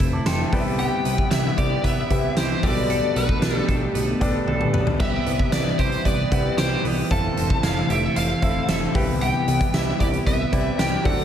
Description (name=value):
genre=1980s-style pop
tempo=114 BPM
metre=4/4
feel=straight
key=unclear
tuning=A4 = 441 Hz
part: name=clear concert grand piano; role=accompaniment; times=0.0-11.2 s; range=B2 to D6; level=-28 LUFS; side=left 2 dB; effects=shimmer reverb, slapback echo
part: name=phased analog pad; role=sustained chords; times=0.0-11.2 s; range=C3 to G4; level=-29 LUFS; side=equal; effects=phaser, chorus
part: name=twelve-string electric guitar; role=riff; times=0.0-11.2 s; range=E3 to A4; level=-29 LUFS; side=right 3 dB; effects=lush chorus, shimmer reverb, slapback echo
part: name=fat analog bass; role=bass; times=0.0-11.2 s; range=F1 to D2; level=-27 LUFS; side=equal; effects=none
part: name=huge arena drum kit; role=drums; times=0.0-11.2 s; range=crash cymbal, hi-hat, kick drum, snare drum, toms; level=-23 LUFS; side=equal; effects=none
part: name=biting lead guitar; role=melody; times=0.8-11.2 s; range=B4 to A5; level=-27 LUFS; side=left 1 dB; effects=overdrive, shimmer reverb, slapback echo
room=moderate lush hall reverb, RT60 1.8 s, small room ambience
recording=big arena sound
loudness=-19 LUFS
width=side -9 dB against mid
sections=0.0-11.2 A section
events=drum fill 4.5-5.0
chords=0.0 Fmaj7; 0.5 Cmaj7; 2.6 Gadd9/B; 5.0 Cmaj7; 7.1 Fmaj7; 8.9 Cmaj7